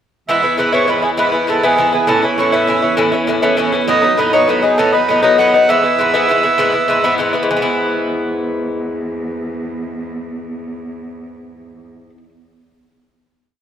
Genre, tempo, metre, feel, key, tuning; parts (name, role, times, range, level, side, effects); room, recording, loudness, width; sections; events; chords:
celtic folk, Celtic slide; 133 BPM (dotted quarters); 12/8; straight; E major; A4 = 441 Hz
accordion; melody; 0.3-7.1 s; G#4 to F#5; -16 LUFS; right 4 dB
Irish bouzouki; accompaniment; 0.3-12.3 s; G#2 to E4; -15 LUFS; left 2 dB
clear cello; drone; 0.3-11.9 s; E2; -26 LUFS; right 4 dB; stereo widening
wet plate reverb, RT60 2.5 s; rough home demo mix; -12 LUFS; side -9 dB against mid
0.3-7.5 A section; 7.5-11.1 final chord
0.3 E; 2.1 A; 3.9 B7; 5.7 E